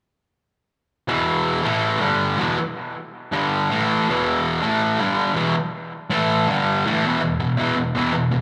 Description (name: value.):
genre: rock.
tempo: 162 BPM.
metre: 4/4.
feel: straight.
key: unclear.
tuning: A4 = 438 Hz.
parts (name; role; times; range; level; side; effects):
fuzz guitar; solo; 1.1-8.4 s; E2 to A3; -21 LUFS; equal; distortion, slapback echo, analog delay.
room: light reverb.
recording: live gig heard through the venue's PA, club reverb.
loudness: -21 LUFS.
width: mono.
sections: 1.1-7.0 A section; 7.0-8.4 B section.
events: none.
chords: 1.1 E5; 1.7 A5; 2.0 G5; 2.4 E5; 3.3 G5; 3.7 A5; 4.1 E5; 4.6 A5; 5.0 G5; 5.4 E5; 6.1 A5; 6.5 G5; 6.9 A5; 7.0 E5.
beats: | 1.10 1.47 1.84 2.22 | 2.59 2.96 3.33 3.71 | 4.08 4.45 4.82 5.19 | 5.56 5.93 6.30 6.67 | 7.04 7.42 7.79 8.16.